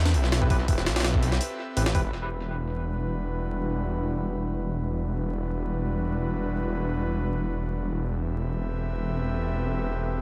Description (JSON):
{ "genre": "drum and bass, jungle", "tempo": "free time", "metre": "none", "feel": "none", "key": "E minor", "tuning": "A4 = 441 Hz", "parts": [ { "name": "airy breathy pad", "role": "sustained chords", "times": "0.0-10.2 s", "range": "G3 to E5", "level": "-34 LUFS", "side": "equal", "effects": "chorus" }, { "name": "detuned saw bass", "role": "bass", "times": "0.0-10.2 s", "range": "D1 to E2", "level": "-30 LUFS", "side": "equal", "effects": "none" }, { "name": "jungle sampler-style drum kit", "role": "drums", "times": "0.1-2.0 s", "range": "hi-hat, kick drum, snare drum", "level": "-29 LUFS", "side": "equal", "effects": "tape echo" }, { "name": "barky tine electric piano", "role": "stabs", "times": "0.4-2.0 s", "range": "C4 to B4", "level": "-38 LUFS", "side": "equal", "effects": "overdrive, low-pass filter, tape echo" } ], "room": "light reverb", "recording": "echo-heavy mix, vinyl crackle", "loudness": "-28 LUFS", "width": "mono", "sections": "0.0-2.1 A section; 2.1-10.2 B section", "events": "drop 0.0-2.1", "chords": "0.0 Am7; 2.1 Em7; 7.9 Am7/E", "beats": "free time" }